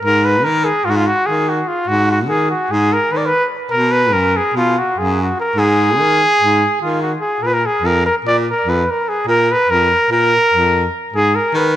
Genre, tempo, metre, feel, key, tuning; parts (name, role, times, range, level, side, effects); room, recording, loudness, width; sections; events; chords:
balkan folk; 292 BPM (eighths); 9/8; straight; A4 = 440 Hz
warm trumpet; melody; 0.0-11.8 s; F4 to D5; -14 LUFS; equal; tape echo
warm baritone saxophone; bass; 0.0-11.8 s; F2 to Eb3; -18 LUFS; equal
moderate recital hall reverb, RT60 1.6 s; -13 LUFS; side -12 dB against mid
0.0-7.4 A section; 7.4-11.8 B section
0.0 Ab5; 3.7 B5; 5.6 Ab5; 7.4 Bb5; 11.1 Abm